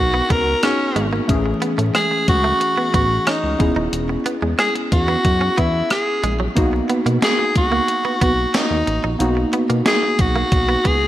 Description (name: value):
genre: 1980s-style pop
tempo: 91 BPM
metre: 4/4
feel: straight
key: B major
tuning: A4 = 440 Hz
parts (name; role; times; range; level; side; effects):
- raspy alto saxophone; melody; 0.0-11.1 s; C#4 to A#4; -20 LUFS; equal; ping-pong delay
- warm analog keys; accompaniment; 0.0-11.1 s; E3 to A#4; -23 LUFS; equal; chorus
- chorused synth bass; bass; 0.0-11.1 s; D#1 to B2; -22 LUFS; equal; none
- direct-recorded clean electric guitar; riff; 0.1-10.9 s; F#3 to D#4; -26 LUFS; right 3 dB; wide subtle chorus
- gated 80s digital drum machine; drums; 0.3-11.0 s; hi-hat, kick drum, rim click, snare drum; -21 LUFS; equal; gated reverb, gated reverb snare
room: moderate plate reverb, RT60 2.7 s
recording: bright 1980s-style digital production, vinyl crackle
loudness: -16 LUFS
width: side -13 dB against mid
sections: 0.0-11.1 A section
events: none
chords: 0.0 Bmaj7; 1.3 Amaj7; 3.6 E6; 6.6 Bmaj7